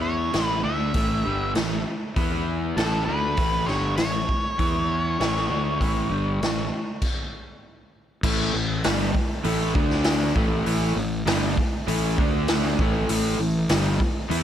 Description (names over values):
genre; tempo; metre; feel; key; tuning
blues rock power trio and southern rock; 99 BPM; 4/4; straight; A mixolydian; A4 = 439 Hz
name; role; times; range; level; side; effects
octave-fuzz lead guitar; melody; 0.0-7.6 s; A4 to E5; -28 LUFS; equal; distortion
overdriven electric guitar; riff; 0.0-14.4 s; G2 to E4; -26 LUFS; equal; none
fuzz fingered electric bass; bass; 0.0-14.4 s; G1 to E2; -27 LUFS; equal; overdrive
raw garage drum kit; drums; 0.3-14.4 s; crash cymbal, hi-hat, kick drum, snare drum; -26 LUFS; equal; none
room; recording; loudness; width
little or no reverb; none; -21 LUFS; side -10 dB against mid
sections
0.0-8.2 A section; 8.2-14.4 B section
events
stop 7.0-8.2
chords
0.3 A5; 2.2 E5; 2.8 A; 4.6 E5; 5.2 A; 7.0 N.C.; 8.2 A5; 9.8 D5; 10.4 A5; 12.2 D5; 12.8 A5